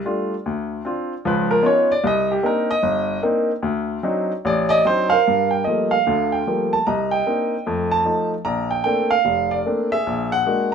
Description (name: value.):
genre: solo jazz.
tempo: 150 BPM.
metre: 4/4.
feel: swing 66% on 8ths, rubato.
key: G minor.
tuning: A4 = 443 Hz.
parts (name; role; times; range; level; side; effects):
warm baby grand piano; solo; 0.1-10.7 s; F1 to Bb5; -18 LUFS; equal; none.
room: wet studio reverb, RT60 0.5 s.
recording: band playing live in one room.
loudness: -18 LUFS.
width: side -7 dB against mid.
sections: 0.0-5.3 A section; 5.3-10.7 B section.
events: grand piano solo 0.0-5.3.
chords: 0.5 Dm7; 1.2 C#9; 2.0 Cm9; 3.6 D7b9; 5.3 Gm9; 6.9 Cm9; 7.7 F7; 8.5 Bbmaj9; 10.1 Bbaug7.